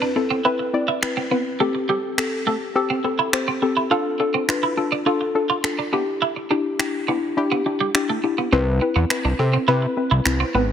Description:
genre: dance-pop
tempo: 104 BPM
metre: 4/4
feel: straight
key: C major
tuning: A4 = 441 Hz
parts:
  - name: soft round pluck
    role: accompaniment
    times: 0.0-10.7 s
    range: C4 to D5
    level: -22 LUFS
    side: left 3 dB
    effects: chorus
  - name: twelve-string electric guitar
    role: riff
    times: 0.0-10.6 s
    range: G3 to F4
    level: -24 LUFS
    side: right 6 dB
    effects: wide subtle chorus
  - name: electronic finger snaps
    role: drums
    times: 1.0-10.4 s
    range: none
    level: -26 LUFS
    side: equal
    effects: soft clipping on snare
  - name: fat analog bass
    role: bass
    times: 8.5-10.7 s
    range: Ab1 to C3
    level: -19 LUFS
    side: equal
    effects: none
room: moderate plate reverb, RT60 2.5 s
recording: dense, heavily limited modern master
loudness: -19 LUFS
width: side -9 dB against mid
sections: 0.0-10.7 A section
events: none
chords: 0.0 Cmaj7; 1.6 Am7; 3.9 F6; 5.9 Em7; 8.5 Cmaj7

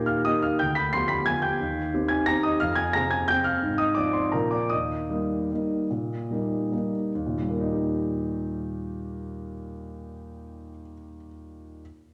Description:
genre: classical, piano waltz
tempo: 134-190 BPM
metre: 3/4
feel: rubato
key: Eb major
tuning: A4 = 440 Hz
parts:
  - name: warm concert grand piano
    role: solo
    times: 0.0-11.8 s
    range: D2 to C7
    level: -27 LUFS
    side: equal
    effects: none
room: wet recital hall reverb, RT60 1.4 s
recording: none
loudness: -26 LUFS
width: mono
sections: 0.0-7.2 A section; 7.2-9.6 B section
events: slowing down 4.1-7.2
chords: 0.0 Eb; 0.6 G7/D; 1.6 Cm/Eb; 2.6 Fm; 3.6 Fm/Ab; 4.3 Bb; 4.7 Eb

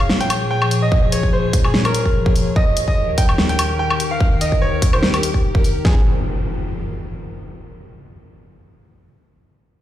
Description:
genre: heavy wobble dubstep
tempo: 146 BPM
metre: 4/4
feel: swing 54% on 16ths, half-time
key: F minor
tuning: A4 = 436 Hz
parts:
  - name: bright concert grand piano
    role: melody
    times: 0.0-6.0 s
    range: G4 to G5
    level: -23 LUFS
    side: right 2 dB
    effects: digital delay
  - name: evolving wavetable pad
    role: sustained chords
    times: 0.0-6.0 s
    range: Eb2 to Db5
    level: -22 LUFS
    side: left 2 dB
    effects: chorus, built-in reverb, sidechain pumping
  - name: big-room dance drum kit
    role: drums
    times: 0.0-5.7 s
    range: hi-hat, snare drum, woodblock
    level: -20 LUFS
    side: left 1 dB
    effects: studio reverb
  - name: big-room dance drum kit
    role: drums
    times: 0.9-6.0 s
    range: kick drum, snare drum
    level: -17 LUFS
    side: equal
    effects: studio reverb
  - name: impact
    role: sound effects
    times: 5.8-7.5 s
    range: none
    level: -23 LUFS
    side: equal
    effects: none
room: light reverb, digital ambience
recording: played on a big sound system in a bare room, stone room reverb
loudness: -15 LUFS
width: side -12 dB against mid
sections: 0.0-5.8 A section; 5.8-7.5 B section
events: none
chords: 0.0 Bbm7; 2.6 Eb; 5.8 Fm

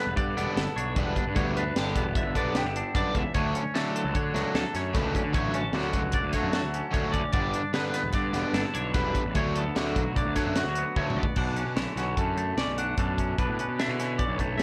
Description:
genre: math rock and midwest emo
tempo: 150 BPM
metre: 5/4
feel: straight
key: D major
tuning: A4 = 441 Hz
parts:
  - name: clean electric guitar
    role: accompaniment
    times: 0.0-14.6 s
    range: D2 to A4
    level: -35 LUFS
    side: equal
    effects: spring reverb
  - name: twangy electric guitar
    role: arpeggios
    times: 0.0-14.6 s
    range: F#4 to F#5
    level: -35 LUFS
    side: equal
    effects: subtle chorus
  - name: crunchy overdriven guitar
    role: riff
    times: 0.0-11.2 s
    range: D3 to D4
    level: -34 LUFS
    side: equal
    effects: none
  - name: fuzz picked electric bass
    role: bass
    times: 0.1-14.6 s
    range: E1 to D3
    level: -34 LUFS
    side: equal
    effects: overdrive
  - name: crisp fusion drum kit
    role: drums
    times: 0.2-14.6 s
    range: crash cymbal, hi-hat, kick drum, snare drum, toms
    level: -33 LUFS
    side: equal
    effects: none
room: light reverb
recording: worn, warbling old tape, cassette tape, warbly pitch drift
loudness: -28 LUFS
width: mono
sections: 0.0-11.4 A section; 11.4-14.6 B section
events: drum fill 11.0-11.4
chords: 0.0 G6; 3.3 Dmaj7; 7.3 G69; 9.4 D6; 11.4 Bm9

